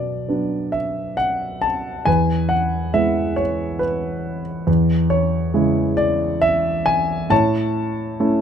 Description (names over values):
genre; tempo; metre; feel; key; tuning
classical, lyrical solo piano; 68 BPM; 3/4; rubato; unclear; A4 = 442 Hz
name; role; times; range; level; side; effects
dark concert grand piano; solo; 0.0-8.4 s; E2 to A5; -18 LUFS; equal; none
room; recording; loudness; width
little or no reverb; close, detailed microphones; -18 LUFS; side -8 dB against mid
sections
0.0-8.4 A section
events
none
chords
0.0 Bm; 2.1 E; 4.7 C#m/E; 7.3 A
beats
0.29 1.19 | 2.07 2.94 3.81 | 4.68 5.55 6.42 | 7.31 8.21